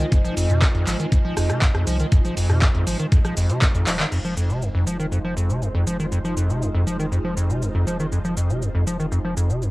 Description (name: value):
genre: acid house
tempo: 120 BPM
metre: 4/4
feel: straight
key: F minor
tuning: A4 = 439 Hz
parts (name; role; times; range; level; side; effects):
- string machine, full ensemble; sustained chords; 0.0-9.7 s; Ab3 to C5; -32 LUFS; equal; ensemble chorus, sidechain pumping, cassette tape
- liquid acid bass; riff; 0.0-9.7 s; F2 to F3; -22 LUFS; equal; chorus, overdrive, cassette tape
- warm sub bass; bass; 0.0-9.7 s; Eb1 to F2; -28 LUFS; equal; sidechain pumping
- punchy analog drum machine; drums; 0.0-9.7 s; crash cymbal, handclaps, hi-hat, rim click, shaker; -27 LUFS; equal; overdrive, cassette tape
- warbly tape-like pad; texture; 0.0-9.7 s; F4 to Ab5; -35 LUFS; right 2 dB; chorus, built-in reverb, sidechain pumping, cassette tape
- electronic kick drum; drums; 0.1-3.7 s; none; -18 LUFS; equal; cassette tape
room: light reverb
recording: home recording on cassette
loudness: -19 LUFS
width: side -20 dB against mid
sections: 0.0-4.1 A section; 4.1-9.7 B section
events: drum fill 3.9; band accent 4.0; filter sweep on string machine 4.1-9.7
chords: 0.0 Fm7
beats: | 0.12 0.62 1.12 1.62 | 2.12 2.62 3.12 3.62 | 4.12 4.62 5.12 5.62 | 6.12 6.62 7.12 7.62 | 8.12 8.62 9.12 9.62